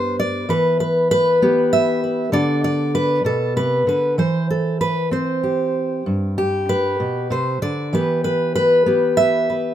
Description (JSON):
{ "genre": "folk, solo fingerstyle acoustic guitar", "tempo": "65 BPM (dotted quarters)", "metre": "6/8", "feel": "rubato", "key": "unclear", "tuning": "A4 = 439 Hz", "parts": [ { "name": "fingerpicked steel-string acoustic guitar", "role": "solo", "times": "0.0-9.7 s", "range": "G2 to E5", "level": "-16 LUFS", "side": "equal", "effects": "none" } ], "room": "light reverb", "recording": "minimal, uncompressed stereo recording", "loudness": "-16 LUFS", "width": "side -11 dB against mid", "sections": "0.0-9.7 A section", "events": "none", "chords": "0.5 Em; 2.3 Bm7; 4.2 C/E; 6.1 G; 7.9 Em", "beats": "| 0.50 1.42 | 2.33 3.25 | 4.17 5.11 | 6.06 7.00 | 7.93 8.86" }